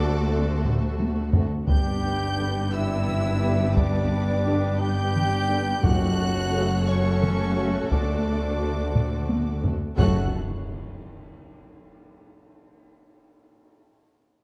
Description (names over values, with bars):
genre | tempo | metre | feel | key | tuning
cinematic, epic orchestral film score | 58 BPM (dotted quarters) | 6/8 | straight | F# phrygian | A4 = 440 Hz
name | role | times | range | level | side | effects
warm symphonic violin section | melody | 0.0-10.4 s | C#6 to G6 | -39 LUFS | equal | none
mellow concert flute | second line | 0.0-10.4 s | C#5 to G5 | -36 LUFS | equal | none
warm symphonic violin section | second line | 0.0-10.4 s | G4 to C#5 | -38 LUFS | equal | none
rich symphonic viola section | accompaniment | 0.0-10.4 s | A3 to F#4 | -35 LUFS | equal | none
warm trumpet | stabs | 0.0-10.3 s | C#4 to G4 | -35 LUFS | equal | none
warm symphonic cello section | bass | 0.0-10.4 s | D2 to G2 | -30 LUFS | equal | none
warm symphonic double bass section | bass | 0.0-10.4 s | F#1 to D2 | -31 LUFS | equal | none
mellow French horn section | sustained chords | 0.3-10.3 s | B3 to F#4 | -37 LUFS | equal | none
warm trombone section | sustained chords | 0.3-10.3 s | C#3 to A3 | -40 LUFS | equal | none
taiko ensemble | drums | 0.7-11.3 s | none | -28 LUFS | equal | none
timpani | percussion | 5.8-6.8, 10.0-10.3 s | F#2 | -30 LUFS | equal | none
impact | sound effects | 10.0-12.1 s | none | -37 LUFS | equal | none
room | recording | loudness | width
moderate scoring stage reverb, RT60 1.6 s | dark, warm production | -24 LUFS | mono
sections
0.0-10.0 A section; 10.0-12.1 B section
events
drum fill 0.6-1.7, 9.0-10.0; impact 10.0-12.1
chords
0.0 D7; 1.7 G; 5.8 F#m; 7.9 D7; 10.0 F#m